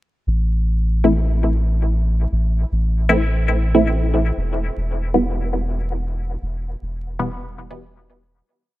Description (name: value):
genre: dub techno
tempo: 117 BPM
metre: 4/4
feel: swing 55% on 16ths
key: A minor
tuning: A4 = 440 Hz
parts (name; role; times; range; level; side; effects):
- soft dub sub bass; bass; 0.3-8.4 s; E1 to A1; -19 LUFS; equal; none
- filtered dub chord stab; stabs; 1.0-7.8 s; B2 to E4; -20 LUFS; equal; phaser, dub echo
room: light reverb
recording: vinyl crackle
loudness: -17 LUFS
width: side -16 dB against mid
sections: 0.3-8.5 groove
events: fade-out 5.7-8.5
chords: 0.3 A5; 4.4 Em